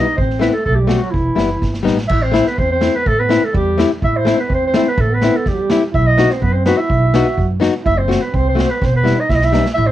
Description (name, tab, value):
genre	klezmer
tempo	125 BPM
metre	2/4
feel	straight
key	unclear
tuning	A4 = 440 Hz
part	mellow clarinet	melody	0.0-9.9 s	E4 to E5	-18 LUFS	equal	cassette tape
part	mellow trombone	second line	0.0-9.9 s	E3 to F#4	-24 LUFS	right 6 dB	cassette tape
part	nylon-string guitar	accompaniment	0.0-9.6 s	G3 to F#4	-18 LUFS	left 6 dB	cassette tape, plate reverb
part	upright bass	bass	0.2-9.9 s	E1 to F#2	-18 LUFS	right 1 dB	none
part	street-band drum kit	drums	0.2-9.8 s	crash cymbal, kick drum, snare drum	-21 LUFS	right 1 dB	cassette tape
room	light reverb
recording	home recording on cassette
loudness	-13 LUFS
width	side -13 dB against mid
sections	0.0-2.1 A section; 2.1-9.8 B section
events	drum fill 1.6-2.1, 8.8-9.8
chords	0.2 Am; 1.1 Em; 2.1 Am; 5.9 B; 7.9 F#dim; 8.8 Em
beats	| 0.17 0.66 | 1.14 1.62 | 2.10 2.58 | 3.06 3.54 | 4.02 4.50 | 4.97 5.46 | 5.93 6.41 | 6.89 7.37 | 7.85 8.33 | 8.81 9.29 | 9.77